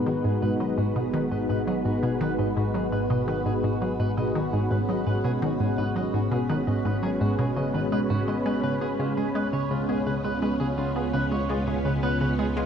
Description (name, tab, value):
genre	ambient, sequencer-driven space music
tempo	84 BPM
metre	4/4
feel	straight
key	G# dorian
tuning	A4 = 441 Hz
part	string machine, full ensemble	sustained chords	0.0-12.7 s	G#3 to B4	-26 LUFS	equal	ensemble chorus
part	analog drone	bass	0.1-12.7 s	G#1 to C#2	-37 LUFS	equal	chorus, tube saturation
part	electric guitar at the edge of break-up	arpeggios	0.1-12.7 s	E#4 to D#5	-36 LUFS	right 1 dB	auto-pan, ping-pong delay
part	resonant blip pluck	riff	0.1-12.7 s	G#2 to B3	-27 LUFS	equal	chorus, ping-pong delay
room	moderate plate reverb, RT60 3.3 s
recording	dark, warm production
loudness	-23 LUFS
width	side -8 dB against mid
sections	0.0-12.7 A section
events	fade-in on clean electric guitar 0.0-12.7; fade-in on synth drone 0.0-12.7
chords	0.0 G#m7; 8.6 C#7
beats	| 0.07 0.78 1.50 2.21 | 2.92 3.64 4.35 5.07 | 5.78 6.50 7.21 7.92 | 8.64 9.35 10.07 10.78 | 11.50 12.21